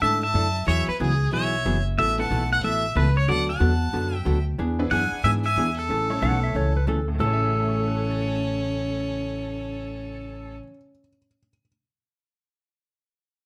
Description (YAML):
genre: country, western swing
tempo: 184 BPM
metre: 4/4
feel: swing 63% on 8ths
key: A major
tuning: A4 = 439 Hz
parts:
  - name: pedal steel guitar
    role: melody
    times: 0.0-10.6 s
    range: G#4 to F#5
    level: -29 LUFS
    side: equal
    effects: none
  - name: bright fiddle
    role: second line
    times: 0.0-10.6 s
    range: C#4 to A5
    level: -33 LUFS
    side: equal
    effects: none
  - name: vintage hollow-body jazz guitar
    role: accompaniment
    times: 0.0-10.7 s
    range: A2 to A4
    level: -32 LUFS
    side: equal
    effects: none
  - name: upright bass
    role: bass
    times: 0.0-10.6 s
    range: F#1 to G#2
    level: -28 LUFS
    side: equal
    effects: none
  - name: honky-tonk upright piano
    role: accompaniment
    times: 2.2-2.6, 4.8-11.7 s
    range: A2 to E7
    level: -36 LUFS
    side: equal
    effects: none
  - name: clean lap steel guitar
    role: second line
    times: 6.2-10.6 s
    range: A4 to F#5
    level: -36 LUFS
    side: equal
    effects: none
room: moderate studio reverb, RT60 0.8 s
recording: none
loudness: -24 LUFS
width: mono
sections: 0.0-7.2 A section; 7.2-9.8 B section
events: none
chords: 0.0 Dsus2; 0.7 Eadd9; 2.0 Asus2; 3.3 D6; 4.6 E7; 5.9 A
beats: 0.02 0.35 | 0.67 1.00 1.33 1.65 | 1.98 2.31 2.63 2.96 | 3.28 3.61 3.94 4.26 | 4.59 4.92 5.24 5.57 | 5.89 6.22 6.55 6.87 | 7.20 7.52 7.85 8.17 | 8.50 8.83 9.15 9.48